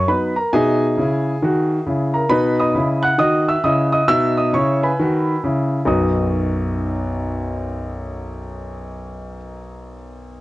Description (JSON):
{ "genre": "jazz, stride piano", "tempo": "134 BPM", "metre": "4/4", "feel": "swing 65% on 8ths", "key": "B major", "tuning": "A4 = 440 Hz", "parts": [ { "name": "warm concert grand piano", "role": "solo", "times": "0.0-10.4 s", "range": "B1 to F#6", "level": "-17 LUFS", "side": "equal", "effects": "none" } ], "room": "light reverb", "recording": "worn, warbling old tape, cassette tape, warbly pitch drift, nothing above 11.0 kHz", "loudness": "-16 LUFS", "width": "side -18 dB against mid", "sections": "0.0-5.9 A section; 5.9-9.5 B section", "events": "none", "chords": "0.0 B; 0.5 E/B; 2.3 B; 4.1 E/B; 5.9 B", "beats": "0.07 | 0.52 0.97 1.41 1.86 | 2.30 2.75 3.20 3.64 | 4.09 4.54 4.98 5.43 | 5.88 6.32 6.77 7.22 | 7.66 8.11 8.56 9.01" }